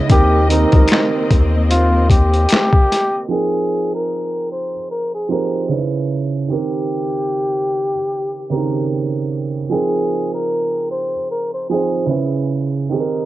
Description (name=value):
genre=lo-fi hip hop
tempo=75 BPM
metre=4/4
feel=swing 58% on 16ths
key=F minor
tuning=A4 = 441 Hz
part: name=felt-muted upright piano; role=accompaniment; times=0.0-13.3 s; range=Db3 to G5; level=-20 LUFS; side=right 5 dB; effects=cassette tape, low-pass filter
part: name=warm studio string section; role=sustained chords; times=0.0-3.3 s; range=Bb3 to Eb5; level=-24 LUFS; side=left 1 dB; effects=low-pass filter, cassette tape
part: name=breathy flugelhorn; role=melody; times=0.1-13.3 s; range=Eb4 to C5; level=-20 LUFS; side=left 1 dB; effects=low-pass filter, cassette tape
part: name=saturated sub bass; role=bass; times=0.1-2.5 s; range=Db2 to Eb2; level=-16 LUFS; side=left 1 dB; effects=none
part: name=boom bap sampler-style drum kit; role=drums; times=0.1-3.1 s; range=finger snaps, hi-hat, kick drum, snare drum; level=-13 LUFS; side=left 1 dB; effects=overdrive, cassette tape
part: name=finger snap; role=percussion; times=0.9-2.7 s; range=none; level=-26 LUFS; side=left 9 dB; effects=none
room=light reverb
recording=home recording on cassette, low-pass filter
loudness=-15 LUFS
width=side -15 dB against mid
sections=0.0-3.3 A section; 3.3-13.3 B section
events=none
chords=0.1 Cm7; 3.3 Fm11; 5.7 Dbm7; 6.5 Cm7/Eb; 9.7 Fm11; 12.1 Dbm7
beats=| 0.10 0.90 1.70 2.50 | 3.30 4.10 4.90 5.70 | 6.50 7.30 8.10 8.90 | 9.70 10.50 11.30 12.10 | 12.90